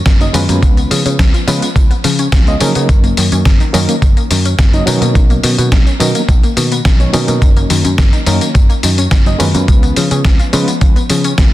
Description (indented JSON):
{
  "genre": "nu-disco, nu disco",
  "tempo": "106 BPM",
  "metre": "4/4",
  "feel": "straight",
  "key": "F# major",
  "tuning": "A4 = 440 Hz",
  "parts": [
    { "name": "wide unison pluck", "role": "arpeggios", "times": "0.1-11.5 s", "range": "D#3 to E#4", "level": "-19 LUFS", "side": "left 4 dB", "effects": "sidechain pumping, tape echo" },
    { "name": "picked electric bass", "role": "bass", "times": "0.1-11.5 s", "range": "F#1 to C#3", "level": "-15 LUFS", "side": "equal", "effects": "sidechain pumping" },
    { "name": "dusty soul sampler-style drum kit", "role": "drums", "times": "0.1-11.5 s", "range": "hi-hat, snare drum, tambourine", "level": "-18 LUFS", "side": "left 2 dB", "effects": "small room ambience" },
    { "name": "electronic kick drum", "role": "drums", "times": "0.1-11.5 s", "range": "none", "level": "-10 LUFS", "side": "equal", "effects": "small room ambience" },
    { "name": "barky reed electric piano", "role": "accompaniment", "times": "0.2-10.7 s", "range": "F#3 to D#5", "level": "-19 LUFS", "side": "right 1 dB", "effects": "overdrive, fast tremolo, sidechain pumping, ping-pong delay" }
  ],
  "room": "little or no reverb",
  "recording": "dense, heavily limited modern master",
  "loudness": "-9 LUFS",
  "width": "side -15 dB against mid",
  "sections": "0.0-11.5 A section",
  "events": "none",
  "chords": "0.0 F#6; 0.6 C#7; 2.9 F#6; 4.9 Bmaj9; 7.4 F#6; 9.7 C#7"
}